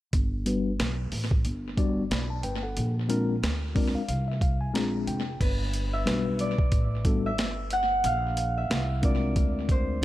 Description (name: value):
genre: hip hop, jazz-hop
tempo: 91 BPM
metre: 4/4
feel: swing 58% on 16ths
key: G major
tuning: A4 = 440 Hz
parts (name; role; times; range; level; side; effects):
- upright bass; bass; 0.1-10.0 s; F1 to D2; -30 LUFS; equal; none
- boom bap sampler-style drum kit; drums; 0.1-10.0 s; crash cymbal, hi-hat, kick drum, snare drum; -28 LUFS; equal; tape echo
- tine electric piano; accompaniment; 0.5-10.0 s; G3 to B5; -30 LUFS; left 3 dB; medium stereo tremolo, low-pass filter
- concert harp; melody; 5.4-10.0 s; B4 to F#5; -30 LUFS; right 1 dB; tape echo
room: little or no reverb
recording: echo-heavy mix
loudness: -24 LUFS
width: side -15 dB against mid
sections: 0.1-5.4 A section; 5.4-10.0 B section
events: filter sweep on tine electric piano 0.1-5.4; tine electric piano fill 3.4-5.4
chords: 0.1 Gmaj7; 2.8 Bb9; 5.4 Gmaj7; 8.0 Bb9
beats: | 0.13 0.79 1.45 2.11 | 2.77 3.43 4.09 4.75 | 5.41 6.06 6.72 7.38 | 8.04 8.70 9.36 10.02